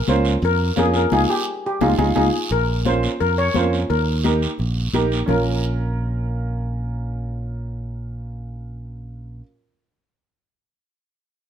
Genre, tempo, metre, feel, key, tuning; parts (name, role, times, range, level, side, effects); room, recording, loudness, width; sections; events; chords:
latin, cumbia; 173 BPM; 4/4; straight; Bb dorian; A4 = 441 Hz
steel pan; melody; 0.0-9.4 s; F4 to Db5; -23 LUFS; left 3 dB
clear upright piano; accompaniment; 0.1-9.4 s; Db4 to Bb4; -23 LUFS; right 3 dB
fingered electric bass; bass; 0.1-9.4 s; Bb1 to F2; -22 LUFS; right 1 dB
congas; percussion; 0.1-5.4 s; -26 LUFS; left 5 dB
guiro; percussion; 0.1-5.4 s; -32 LUFS; right 6 dB
moderate studio reverb, RT60 0.8 s; -18 LUFS; side -9 dB against mid
0.0-2.5 A section; 2.5-5.3 B section; 5.3-8.1 C section
band accent 1.1-2.5; drum fill 1.6-2.5
0.0 Bbm; 1.1 Dbadd9; 2.5 Bbm; 3.9 Eb; 5.3 Bbm